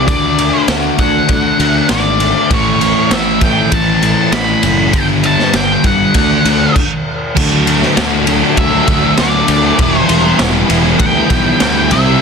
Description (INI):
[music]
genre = quiet-loud alternative rock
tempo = 99 BPM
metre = 4/4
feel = straight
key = unclear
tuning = A4 = 440 Hz
[part]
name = octave-fuzz lead guitar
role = melody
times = 0.0-12.2 s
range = C#5 to B5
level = -16 LUFS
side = equal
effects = distortion, digital delay
[part]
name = electric guitar through a small old amp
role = arpeggios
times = 0.0-2.5 s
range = D3 to F#4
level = -21 LUFS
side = left 1 dB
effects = lush chorus, digital delay
[part]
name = thick fuzz guitar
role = riff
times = 0.0-12.2 s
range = G2 to F#4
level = -16 LUFS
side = left 12 dB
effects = distortion
[part]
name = fuzz picked electric bass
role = bass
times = 0.0-12.1 s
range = E1 to D2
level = -18 LUFS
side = right 1 dB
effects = overdrive
[part]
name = raw garage drum kit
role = drums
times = 0.1-12.1 s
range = crash cymbal, kick drum, ride cymbal, snare drum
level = -15 LUFS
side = equal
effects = none
[part]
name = sludgy distorted guitar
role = riff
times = 2.5-12.2 s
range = G2 to E4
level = -17 LUFS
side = right 13 dB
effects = overdrive
[part]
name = rich studio string section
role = sustained chords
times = 7.4-12.2 s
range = F#4 to C6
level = -26 LUFS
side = equal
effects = none
[sound]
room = studio ambience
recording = dense, heavily limited modern master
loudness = -10 LUFS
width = side -6 dB against mid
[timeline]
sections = 0.0-7.4 A section; 7.4-12.2 B section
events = stop 6.8-7.4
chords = 0.1 D; 2.5 Aadd9; 4.9 G5; 6.2 D; 9.8 Em